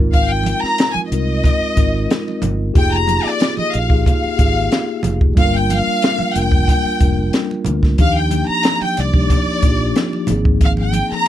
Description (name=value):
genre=lush 1970s-style soul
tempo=92 BPM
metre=4/4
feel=straight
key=unclear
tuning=A4 = 440 Hz
part: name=mellow tine electric piano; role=accompaniment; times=0.0-11.3 s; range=F3 to Bb4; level=-21 LUFS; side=left 2 dB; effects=medium stereo tremolo
part: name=fingered electric bass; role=bass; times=0.0-11.1 s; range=F1 to Eb2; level=-20 LUFS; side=equal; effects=none
part: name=warm studio violin section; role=melody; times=0.1-11.3 s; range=D5 to Bb5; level=-20 LUFS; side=left 1 dB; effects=none
part: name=compact cocktail drum kit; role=drums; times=0.1-11.3 s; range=hi-hat, kick drum, snare drum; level=-16 LUFS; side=equal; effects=none
part: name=congas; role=percussion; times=0.1-11.1 s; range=none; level=-26 LUFS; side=right 5 dB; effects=none
room=little or no reverb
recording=none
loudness=-14 LUFS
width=side -12 dB against mid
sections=0.0-11.3 A section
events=none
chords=0.0 Ab69; 2.8 Fm11; 5.4 Gm7; 8.0 Ebmaj9; 10.3 Ab69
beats=| 0.14 0.79 1.44 2.10 | 2.75 3.40 4.06 4.71 | 5.37 6.02 6.68 7.33 | 7.99 8.64 9.30 9.95 | 10.61 11.26